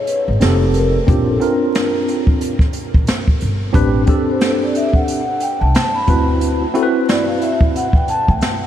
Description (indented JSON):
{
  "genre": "hip hop, jazz-hop",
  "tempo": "90 BPM",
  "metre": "4/4",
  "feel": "swing 58% on 16ths",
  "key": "A dorian",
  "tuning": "A4 = 441 Hz",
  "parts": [
    { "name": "vibraphone with soft mallets", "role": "melody", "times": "0.0-8.7 s", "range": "A4 to B5", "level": "-21 LUFS", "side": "left 1 dB", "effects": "ping-pong delay" },
    { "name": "jazz brush drum kit", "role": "drums", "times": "0.1-8.6 s", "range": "hi-hat, kick drum, snare drum", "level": "-17 LUFS", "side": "equal", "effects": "none" },
    { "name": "upright bass", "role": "bass", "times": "0.3-8.4 s", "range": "F1 to D2", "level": "-18 LUFS", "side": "equal", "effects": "none" },
    { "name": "tine electric piano", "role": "accompaniment", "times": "0.4-7.9 s", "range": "C4 to B4", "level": "-19 LUFS", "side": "equal", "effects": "medium stereo tremolo" }
  ],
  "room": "moderate huge ambient reverb, RT60 8.1 s",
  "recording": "dreamy mix soaked in reverb, vinyl crackle",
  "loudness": "-13 LUFS",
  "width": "side -10 dB against mid",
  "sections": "0.0-8.7 A section",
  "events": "vibraphone solo 0.0-8.7",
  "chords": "0.4 F9; 1.1 Bb69; 3.7 Am11; 6.1 D13",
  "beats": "0.41 | 1.08 1.75 2.42 3.08 | 3.75 4.42 5.08 5.75 | 6.42 7.08 7.75 8.41"
}